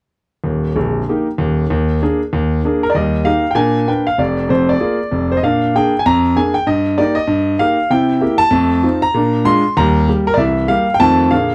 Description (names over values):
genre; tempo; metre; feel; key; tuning
jazz, stride piano; 194 BPM; 4/4; swing 60% on 8ths; Eb major; A4 = 440 Hz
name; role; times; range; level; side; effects
clear concert grand piano; solo; 0.4-11.5 s; Bb0 to C6; -15 LUFS; equal; none
room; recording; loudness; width
light reverb; close, detailed microphones; -15 LUFS; mono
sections
0.5-2.9 A section; 2.9-11.5 B section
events
none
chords
0.5 Eb; 1.7 Bb7/Eb; 2.9 Eb; 3.6 Bb7b9; 4.2 Bb7/F; 5.4 Bb7; 6.0 Bb7/F; 6.7 Eb/G; 7.9 C7; 8.5 F7; 9.1 Bb7; 9.8 Eb; 10.4 C7; 11.0 F7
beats
| 0.45 0.76 1.07 1.39 | 1.70 2.01 2.32 2.63 | 2.95 3.26 3.57 3.88 | 4.19 4.50 4.81 5.12 | 5.43 5.74 6.05 6.36 | 6.67 6.98 7.29 7.60 | 7.91 8.22 8.53 8.84 | 9.15 9.46 9.76 10.07 | 10.38 10.69 11.00 11.31